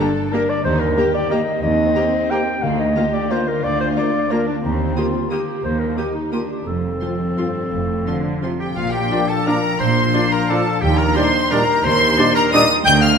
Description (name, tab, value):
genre	classical, orchestral ballroom waltz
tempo	163-196 BPM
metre	3/4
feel	rubato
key	Bb major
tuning	A4 = 442 Hz
part	rich studio violin section	melody	0.0-13.2 s	F5 to G6	-22 LUFS	left 3 dB	none
part	mellow clarinet	second line	0.0-13.2 s	D4 to G5	-22 LUFS	left 1 dB	none
part	rich studio violin section	second line	0.0-13.1 s	Bb3 to G6	-26 LUFS	left 3 dB	none
part	rich studio viola section	accompaniment	0.0-12.6 s	F3 to G4	-27 LUFS	right 2 dB	none
part	mellow French horn section	sustained chords	0.0-12.7 s	Bb3 to G4	-28 LUFS	left 2 dB	none
part	concert harp	arpeggios	0.0-13.2 s	G2 to G5	-25 LUFS	left 6 dB	none
part	rich studio cello section	bass	0.6-13.1 s	D2 to D3	-24 LUFS	right 3 dB	none
part	warm studio double bass section	bass	0.6-13.1 s	F1 to Eb2	-26 LUFS	right 5 dB	none
part	clear oboe	second line	8.6-13.2 s	F4 to G5	-25 LUFS	right 2 dB	none
part	warm trombone section	sustained chords	9.1-12.6 s	Bb2 to G3	-28 LUFS	right 5 dB	none
part	dark trumpet section	stabs	9.1-12.6 s	D5	-27 LUFS	right 1 dB	none
room	wet concert hall reverb, RT60 2.4 s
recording	none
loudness	-16 LUFS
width	side -6 dB against mid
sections	0.0-8.8 A section; 8.8-13.2 B section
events	none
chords	0.0 Gm; 0.6 Eb; 2.6 Bb/D; 4.6 Eb; 6.7 F; 8.8 Bb; 10.8 Ebmaj7